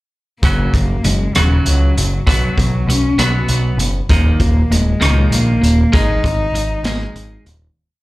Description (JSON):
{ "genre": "quiet-loud alternative rock", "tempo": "65 BPM (dotted quarters)", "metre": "6/8", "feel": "straight", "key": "unclear", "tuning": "A4 = 440 Hz", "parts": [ { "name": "warm cello", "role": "melody", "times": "0.4-7.2 s", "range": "F#3 to Eb4", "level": "-20 LUFS", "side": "left 1 dB", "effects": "none" }, { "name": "twelve-string electric guitar", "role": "arpeggios", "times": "0.4-7.7 s", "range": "Eb2 to B3", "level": "-20 LUFS", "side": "equal", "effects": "none" }, { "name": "growling picked electric bass", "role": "bass", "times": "0.4-7.7 s", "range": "Eb1 to Db2", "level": "-16 LUFS", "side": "equal", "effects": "overdrive" }, { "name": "raw garage drum kit", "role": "drums", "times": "0.4-7.6 s", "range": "hi-hat, kick drum, rim click, snare drum", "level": "-18 LUFS", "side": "equal", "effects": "none" } ], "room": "little or no reverb", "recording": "live gig heard through the venue's PA, club reverb", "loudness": "-12 LUFS", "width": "side -19 dB against mid", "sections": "0.4-7.8 verse", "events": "fade-out 5.9-7.8", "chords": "0.4 Gb; 2.3 B5; 4.1 Eb5; 5.9 Ab5" }